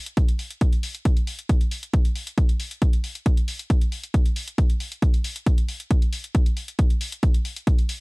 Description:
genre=techno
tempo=136 BPM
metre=4/4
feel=straight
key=none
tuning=none
part: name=electronic hi-hat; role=drums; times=0.1-8.0 s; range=none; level=-35 LUFS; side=left 2 dB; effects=sidechain pumping on hats
part: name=electronic kick drum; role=drums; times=0.2-7.8 s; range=none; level=-19 LUFS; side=equal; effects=none
room=little or no reverb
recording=dark, warm production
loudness=-20 LUFS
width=side -31 dB against mid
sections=0.0-8.0 A section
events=none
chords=none

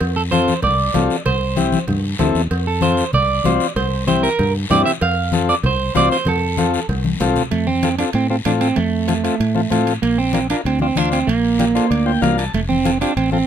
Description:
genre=latin, cumbia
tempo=192 BPM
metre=4/4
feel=straight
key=F major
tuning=A4 = 441 Hz
part: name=fingered electric bass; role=bass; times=0.0-13.4 s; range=F1 to A2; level=-21 LUFS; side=equal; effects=none
part: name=cowbell and timbales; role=percussion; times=0.0-13.3 s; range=none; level=-29 LUFS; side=right 4 dB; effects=none
part: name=guiro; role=percussion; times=0.0-13.5 s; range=none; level=-31 LUFS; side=left 5 dB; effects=none
part: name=electric guitar at the edge of break-up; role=second line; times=0.2-13.5 s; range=A3 to F5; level=-19 LUFS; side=right 5 dB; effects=none
part: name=overdriven combo organ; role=accompaniment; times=0.3-13.4 s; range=C4 to A5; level=-19 LUFS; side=left 5 dB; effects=none
part: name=congas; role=percussion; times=0.3-13.5 s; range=none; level=-24 LUFS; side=left 4 dB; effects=none
room=light reverb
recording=none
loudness=-15 LUFS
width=side -9 dB against mid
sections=0.0-7.5 A section; 7.5-13.5 B section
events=clean electric guitar solo 0.0-7.5, 7.5-13.5; drum fill 7.1-7.5; transistor combo organ fill 11.6-12.5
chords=0.0 F; 1.3 C; 2.5 F; 3.8 C7; 5.0 F; 10.0 Bb; 12.5 F

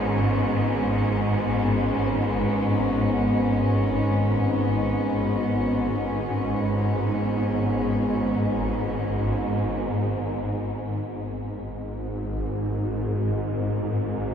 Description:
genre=dark ambient drone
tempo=free time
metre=none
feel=none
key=G# minor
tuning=A4 = 438 Hz
part: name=warm studio cello section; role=sustained chords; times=0.0-9.7 s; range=G#3 to C#4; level=-26 LUFS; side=equal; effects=shimmer reverb
part: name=swarming drone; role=drone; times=0.0-14.3 s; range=G#1 to G#2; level=-24 LUFS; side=equal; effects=built-in reverb
part: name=bronze singing bowl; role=texture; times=0.0-14.3 s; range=none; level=barely audible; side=none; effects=none
room=wet huge ambient reverb, RT60 8.0 s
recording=none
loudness=-22 LUFS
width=side -8 dB against mid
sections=0.0-9.7 A section; 9.7-14.3 B section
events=none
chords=0.0 G#m

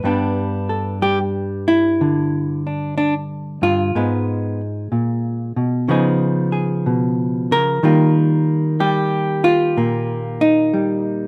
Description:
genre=solo jazz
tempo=62 BPM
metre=4/4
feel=swing 66% on 8ths, rubato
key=Eb major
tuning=A4 = 441 Hz
part: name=hollow-body jazz guitar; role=solo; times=0.0-11.3 s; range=G2 to Cb5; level=-19 LUFS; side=equal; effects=none
room=light reverb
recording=none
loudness=-19 LUFS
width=mono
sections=0.0-11.3 A section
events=none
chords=0.0 G6; 4.0 Abm; 5.9 Db9; 7.8 Ebadd9

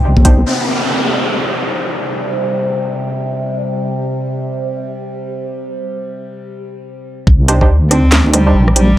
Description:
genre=deep dubstep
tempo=free time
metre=none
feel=none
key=C minor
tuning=A4 = 441 Hz
part: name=overtone-sweeping drone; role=sustained chords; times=0.0-9.0 s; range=C3 to C4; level=-21 LUFS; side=equal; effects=chorus, built-in reverb, phaser
part: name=deep soft wobble bass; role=bass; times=0.0-0.4, 7.3-9.0 s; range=Bb1 to D2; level=-11 LUFS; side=equal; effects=chorus, tube saturation
part: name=filtered dub chord stab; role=stabs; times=0.2-0.4, 7.5-8.9 s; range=D4 to C5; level=-20 LUFS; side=right 3 dB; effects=chorus, dub echo
part: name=electronic kick drum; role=drums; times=0.2-0.4, 7.3-7.7 s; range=none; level=-10 LUFS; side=equal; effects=none
part: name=garage drum kit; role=drums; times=0.2-0.4, 7.5-8.9 s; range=handclaps, hi-hat, rim click, snare drum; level=-14 LUFS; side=equal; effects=low-pass filter on hats, low-pass filter on snare
part: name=downlifter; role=sound effects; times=0.5-3.9 s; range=none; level=-18 LUFS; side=equal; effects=none
part: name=dark cello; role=melody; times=7.9-9.0 s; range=G3 to C4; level=-14 LUFS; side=equal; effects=dub echo
room=light reverb, digital ambience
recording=dry, gritty hardware recording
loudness=-13 LUFS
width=side -13 dB against mid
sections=0.5-7.3 A section; 7.3-9.0 B section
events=break 6.4-7.3; drop 7.3-9.0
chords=0.5 C5; 7.3 Cmadd9

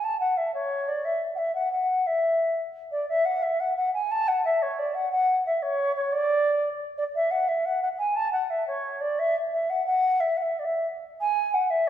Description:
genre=celtic folk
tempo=118 BPM (dotted quarters)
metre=6/8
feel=straight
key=E mixolydian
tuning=A4 = 440 Hz
part: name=baroque flute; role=solo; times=0.0-11.9 s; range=C#5 to A5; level=-23 LUFS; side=equal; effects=none
room=wet recital hall reverb, RT60 1.8 s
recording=recorded in a church or concert hall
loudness=-23 LUFS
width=side -10 dB against mid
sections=0.0-3.1 A section; 3.1-11.2 A section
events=none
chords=none

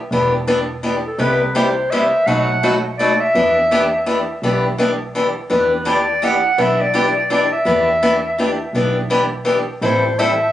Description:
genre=acoustic string swing (jazz manouche)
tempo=167 BPM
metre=3/4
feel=swing 61% on 8ths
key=E minor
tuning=A4 = 439 Hz
part: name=picked acoustic archtop guitar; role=accompaniment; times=0.1-10.3 s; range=B2 to A4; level=-17 LUFS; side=left 2 dB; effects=none
part: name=clear double bass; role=bass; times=0.1-10.5 s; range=E1 to E2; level=-25 LUFS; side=right 1 dB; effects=none
part: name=breathy clarinet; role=melody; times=1.1-10.5 s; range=A4 to F#5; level=-18 LUFS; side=equal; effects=plate reverb, tape echo
room=wet studio reverb, RT60 0.5 s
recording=recorded on a phone in the room, club reverb, nothing above 10.5 kHz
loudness=-14 LUFS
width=side -12 dB against mid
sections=0.0-5.5 A section; 5.5-10.5 A section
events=none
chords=0.0 Em7; 1.2 Cmaj7; 2.3 B7; 3.3 Em7; 9.8 Am7

